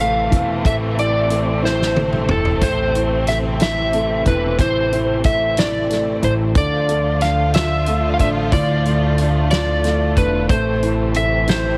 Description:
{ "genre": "six-eight pop ballad", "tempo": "61 BPM (dotted quarters)", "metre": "6/8", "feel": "straight", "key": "A minor", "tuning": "A4 = 440 Hz", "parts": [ { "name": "electric slide guitar", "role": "melody", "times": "0.0-11.8 s", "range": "A4 to F5", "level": "-22 LUFS", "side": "equal", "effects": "tape echo" }, { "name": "dark upright piano", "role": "accompaniment", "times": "0.0-11.8 s", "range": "A2 to F4", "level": "-26 LUFS", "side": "equal", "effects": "none" }, { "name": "dark studio string section", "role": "sustained chords", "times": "0.0-11.8 s", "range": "C3 to F4", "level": "-28 LUFS", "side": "equal", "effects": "none" }, { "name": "upright bass", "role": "bass", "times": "0.0-11.8 s", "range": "E1 to D2", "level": "-24 LUFS", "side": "equal", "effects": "none" }, { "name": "natural country drum kit", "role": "drums", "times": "0.0-11.6 s", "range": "hi-hat, kick drum, snare drum, toms", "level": "-23 LUFS", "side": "equal", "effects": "none" } ], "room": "light reverb, small room ambience", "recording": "heavily compressed radio sound, multiband compression", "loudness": "-18 LUFS", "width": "mono", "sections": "0.0-11.8 A section", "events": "drum fill 1.6-2.6", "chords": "0.0 Am; 6.6 Dm; 10.5 Am", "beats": "| 0.65 1.63 | 2.62 3.60 | 4.58 5.57 | 6.55 7.54 | 8.52 9.51 | 10.49 11.48" }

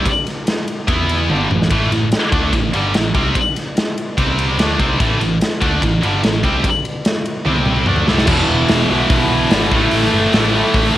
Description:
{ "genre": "hard rock", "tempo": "146 BPM", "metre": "4/4", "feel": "straight", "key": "A minor", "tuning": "A4 = 440 Hz", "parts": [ { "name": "heavy high-gain guitar", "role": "riff", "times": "0.0-11.0 s", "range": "E2 to E4", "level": "-20 LUFS", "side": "left 6 dB", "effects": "distortion" }, { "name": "heavy high-gain guitar", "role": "riff", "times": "0.0-11.0 s", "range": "E2 to E4", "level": "-20 LUFS", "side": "right 6 dB", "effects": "distortion" }, { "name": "overdriven picked electric bass", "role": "bass", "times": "0.0-11.0 s", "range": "E1 to E2", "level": "-21 LUFS", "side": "equal", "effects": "none" }, { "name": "big rock drum kit", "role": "drums", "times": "0.1-10.8 s", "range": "crash cymbal, hi-hat, kick drum, ride cymbal, snare drum, toms", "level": "-18 LUFS", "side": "equal", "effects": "none" }, { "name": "tight distorted guitar", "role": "riff", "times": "8.3-11.0 s", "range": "E2 to A3", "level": "-17 LUFS", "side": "equal", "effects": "distortion" } ], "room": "light reverb, studio reverb", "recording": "home recording on cassette", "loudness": "-13 LUFS", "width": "side -14 dB against mid", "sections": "0.0-8.3 A section; 8.3-11.0 B section", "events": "drum fill 1.3-1.7, 7.5-8.3", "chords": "0.0 N.C.; 0.9 E5; 1.3 Am; 4.2 C5; 4.6 Am; 7.5 C5; 7.9 Am; 8.3 E5; 9.7 A5", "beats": "| 0.06 0.47 0.89 1.30 | 1.71 2.12 2.53 2.94 | 3.36 3.77 4.18 4.59 | 5.00 5.41 5.82 6.23 | 6.64 7.05 7.46 7.88 | 8.29 8.70 9.11 9.52 | 9.93 10.34 10.75" }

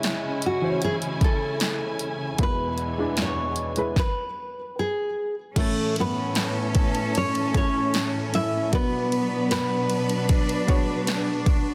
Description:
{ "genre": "pop ballad", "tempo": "76 BPM", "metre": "4/4", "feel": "straight", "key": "A major", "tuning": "A4 = 440 Hz", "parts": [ { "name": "warm upright piano", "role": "accompaniment", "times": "0.0-11.7 s", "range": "E2 to D5", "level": "-33 LUFS", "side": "equal", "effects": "none" }, { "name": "warm studio string section", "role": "sustained chords", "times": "0.0-11.7 s", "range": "E2 to G#5", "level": "-32 LUFS", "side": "equal", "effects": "none" }, { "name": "deep house drum kit", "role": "drums", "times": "0.0-11.6 s", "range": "crash cymbal, hi-hat, kick drum, ride cymbal, snare drum", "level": "-28 LUFS", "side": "equal", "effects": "none" }, { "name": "nylon-string guitar", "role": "melody", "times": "0.5-11.4 s", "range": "A3 to E5", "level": "-30 LUFS", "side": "equal", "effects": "none" }, { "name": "warm studio cello section", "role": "second line", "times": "5.6-11.7 s", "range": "B3 to D4", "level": "-33 LUFS", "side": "equal", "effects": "none" } ], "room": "moderate plate reverb, RT60 1.9 s, studio reverb", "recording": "dense, heavily limited modern master", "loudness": "-25 LUFS", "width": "mono", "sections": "0.0-5.6 A section; 5.6-11.7 B section", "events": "stop 4.0-5.6", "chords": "0.0 C#m; 2.4 E; 5.6 A; 8.7 Bm", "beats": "0.04 0.82 1.60 | 2.39 3.18 3.97 4.77 | 5.57 6.36 7.15 7.94 | 8.73 9.52 10.29 11.07" }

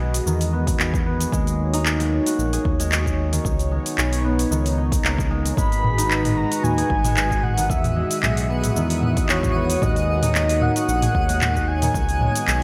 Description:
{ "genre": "organic downtempo", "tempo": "113 BPM", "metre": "4/4", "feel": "swing 54% on 16ths", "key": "unclear", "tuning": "A4 = 438 Hz", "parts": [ { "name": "warm analog pad", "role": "sustained chords", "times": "0.0-12.6 s", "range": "G#3 to E5", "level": "-31 LUFS", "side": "equal", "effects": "chorus, sidechain pumping" }, { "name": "concert harp", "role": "arpeggios", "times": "0.0-12.6 s", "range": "D#3 to G#4", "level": "-29 LUFS", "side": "equal", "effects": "low-pass filter, tape echo, slapback echo" }, { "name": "smooth synth bass", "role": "bass", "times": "0.0-12.6 s", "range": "G#1 to E2", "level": "-26 LUFS", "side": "equal", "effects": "none" }, { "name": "afro-pop drum kit", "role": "drums", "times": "0.1-12.6 s", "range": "cabasa, handclaps, hi-hat, toms", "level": "-27 LUFS", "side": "equal", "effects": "small room ambience" }, { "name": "electronic kick drum", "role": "drums", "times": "0.7-12.1 s", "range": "none", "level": "-27 LUFS", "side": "equal", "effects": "small room ambience" }, { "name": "breathy flute-like synth lead", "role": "melody", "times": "5.6-12.6 s", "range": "C#5 to B5", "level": "-27 LUFS", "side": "equal", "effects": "analog chorus, vintage 12-bit sampler grit, tape echo, slapback echo" }, { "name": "twinkling granular texture", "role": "texture", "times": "6.4-12.6 s", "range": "F#4 to D#6", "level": "-36 LUFS", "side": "equal", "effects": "built-in reverb" } ], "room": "moderate lush hall reverb, RT60 1.8 s, digital ambience", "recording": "big arena sound", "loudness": "-21 LUFS", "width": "mono", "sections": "0.0-12.6 A section", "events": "none", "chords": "0.0 Emaj9; 1.3 D#m7; 3.5 C#sus2; 5.6 G#m7; 7.7 Emaj9; 9.8 D#m7; 11.9 C#sus2", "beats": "0.26 0.80 | 1.33 1.86 2.39 2.92 | 3.45 3.98 4.51 5.04 | 5.57 6.11 6.64 7.17 | 7.70 8.23 8.76 9.29 | 9.82 10.35 10.88 11.41 | 11.95 12.48" }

